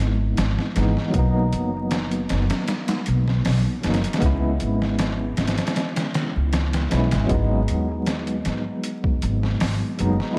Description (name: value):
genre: trip hop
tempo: 78 BPM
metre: 4/4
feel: swing 53% on 16ths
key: G# minor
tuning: A4 = 440 Hz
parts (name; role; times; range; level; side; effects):
- tine electric piano; accompaniment; 0.0-10.4 s; E3 to E4; -28 LUFS; equal; tremolo, vintage 12-bit sampler grit, low-pass filter, tape echo
- upright bass; bass; 0.0-10.2 s; F#1 to G#2; -25 LUFS; equal; none
- trip hop sampler-style drum kit; drums; 0.0-10.4 s; hi-hat, kick drum, snare drum; -28 LUFS; equal; overdrive, studio reverb
room: moderate plate reverb, RT60 2.5 s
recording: dreamy mix soaked in reverb, vinyl crackle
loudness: -22 LUFS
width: mono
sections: 0.0-10.4 A section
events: none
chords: 0.0 Emaj7/G#; 1.1 Bmaj7; 4.2 C#m7; 7.3 G#m7